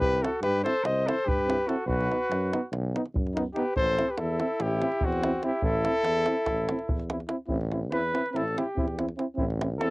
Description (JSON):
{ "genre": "balkan folk, Balkan brass band", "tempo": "288 BPM (eighths)", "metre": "9/8", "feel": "straight", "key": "A dorian sharp4", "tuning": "A4 = 443 Hz", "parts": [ { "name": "mellow cornet", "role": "melody", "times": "0.0-7.1 s", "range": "F#4 to D#5", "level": "-28 LUFS", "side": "left 1 dB", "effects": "cassette tape" }, { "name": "warm flugelhorn", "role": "second line", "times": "0.0-9.9 s", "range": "C4 to C5", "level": "-31 LUFS", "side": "equal", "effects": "none" }, { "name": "warm tuba", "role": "bass", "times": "0.0-9.9 s", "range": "A1 to G2", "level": "-31 LUFS", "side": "equal", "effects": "none" }, { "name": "davul", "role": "percussion", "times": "0.0-9.9 s", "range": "none", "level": "-32 LUFS", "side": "right 1 dB", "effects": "none" }, { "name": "clear trombone", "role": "accompaniment", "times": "0.2-9.9 s", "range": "D#4 to E4", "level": "-34 LUFS", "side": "left 2 dB", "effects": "none" }, { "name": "warm euphonium", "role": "accompaniment", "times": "0.2-9.9 s", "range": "B3 to C4", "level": "-33 LUFS", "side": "right 2 dB", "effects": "none" } ], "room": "light reverb", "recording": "home recording on cassette", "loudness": "-25 LUFS", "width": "side -22 dB against mid", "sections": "0.0-7.5 A section; 7.5-9.9 B section", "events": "flugelhorn solo 7.5-9.9", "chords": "0.0 C; 1.9 B; 3.7 Am" }